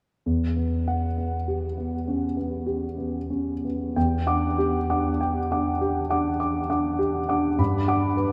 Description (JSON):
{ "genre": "classical, impressionist solo piano", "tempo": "44-52 BPM", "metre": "3/4", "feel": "rubato", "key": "E dorian", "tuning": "A4 = 440 Hz", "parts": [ { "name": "warm concert grand piano", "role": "solo", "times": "0.3-8.3 s", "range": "E2 to D6", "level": "-25 LUFS", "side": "equal", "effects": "none" } ], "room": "wet huge ambient reverb, RT60 7.4 s", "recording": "in a vast, echoing space", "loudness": "-25 LUFS", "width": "mono", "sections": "0.3-4.0 A section; 4.0-8.3 B section", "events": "none", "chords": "0.3 Emadd9; 4.0 Em9; 7.6 Gmaj7" }